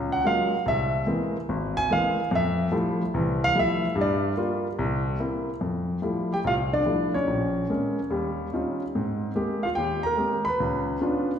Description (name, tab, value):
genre	solo jazz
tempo	145 BPM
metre	4/4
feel	swing 66% on 8ths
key	unclear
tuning	A4 = 444 Hz
part	warm grand piano	solo	0.0-11.4 s	G#1 to B5	-23 LUFS	equal	none
room	wet recital hall reverb, RT60 1.7 s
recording	recorded in a church or concert hall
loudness	-23 LUFS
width	side -8 dB against mid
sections	0.0-5.6 A section; 5.6-11.4 B section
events	grand piano solo 0.0-5.6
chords	0.0 Gbmaj9; 0.7 Caug7; 2.3 Fmaj9; 4.0 Gm7; 4.8 C7; 5.6 Fmaj9; 7.3 Bbm9; 8.1 Eb13; 8.9 Abmaj9; 10.6 Db7b9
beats	0.24 | 0.66 1.07 1.48 1.90 | 2.31 2.72 3.14 3.55 | 3.96 4.38 4.79 5.20 | 5.62 6.03 6.44 6.86 | 7.27 7.69 8.10 8.52 | 8.93 9.35 9.76 10.18 | 10.60 11.01